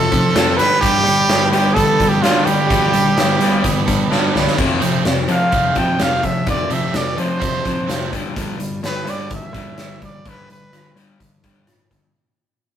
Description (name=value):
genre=indie rock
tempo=127 BPM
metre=4/4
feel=straight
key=G mixolydian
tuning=A4 = 444 Hz
part: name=brilliant trumpet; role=melody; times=0.0-11.0 s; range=F4 to G5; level=-18 LUFS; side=right 1 dB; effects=none
part: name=cranked stack guitar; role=riff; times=0.0-8.2 s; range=C3 to A4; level=-23 LUFS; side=right 6 dB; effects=overdrive
part: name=crunchy overdriven guitar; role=riff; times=0.0-12.1 s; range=F2 to G3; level=-22 LUFS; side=left 5 dB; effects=none
part: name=growling picked electric bass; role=bass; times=0.0-12.1 s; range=C2 to G3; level=-23 LUFS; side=equal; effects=overdrive
part: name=big rock drum kit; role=drums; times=0.1-12.0 s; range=crash cymbal, hi-hat, kick drum, rim click, snare drum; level=-21 LUFS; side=equal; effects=none
room=wet stone room reverb, RT60 1.1 s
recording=rough rehearsal-room recording, tube saturation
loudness=-14 LUFS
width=side -9 dB against mid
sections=0.0-4.6 A section; 4.6-12.1 B section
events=drum fill 4.1-4.6; fade-out 4.6-12.1; trumpet solo 4.6-12.1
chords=0.0 F; 0.6 Gadd9; 4.6 F; 8.1 G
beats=0.35 | 0.82 1.29 1.76 2.23 | 2.70 3.17 3.64 4.11 | 4.58 5.05 5.52 5.99 | 6.46 6.94 7.41 7.88 | 8.35 8.83 9.30 9.77 | 10.25 10.72 11.19 11.67